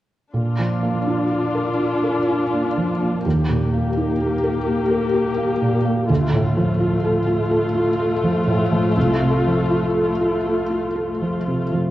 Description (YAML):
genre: cinematic, emotional film score for orchestra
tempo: 62 BPM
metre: 3/4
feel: rubato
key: unclear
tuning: A4 = 439 Hz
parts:
  - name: dark studio viola section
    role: accompaniment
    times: 0.3-11.7 s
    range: A3 to G4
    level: -22 LUFS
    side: left 2 dB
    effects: none
  - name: felt-muted upright piano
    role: accompaniment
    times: 0.3-11.9 s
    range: C2 to Bb4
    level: -19 LUFS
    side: right 1 dB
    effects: none
room: wet scoring stage reverb, RT60 1.8 s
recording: worn, warbling old tape, cassette tape, warbly pitch drift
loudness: -18 LUFS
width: side -14 dB against mid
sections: 0.3-11.9 A section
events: none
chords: 0.3 Bb; 3.3 Eb; 6.1 Dm; 9.0 F/C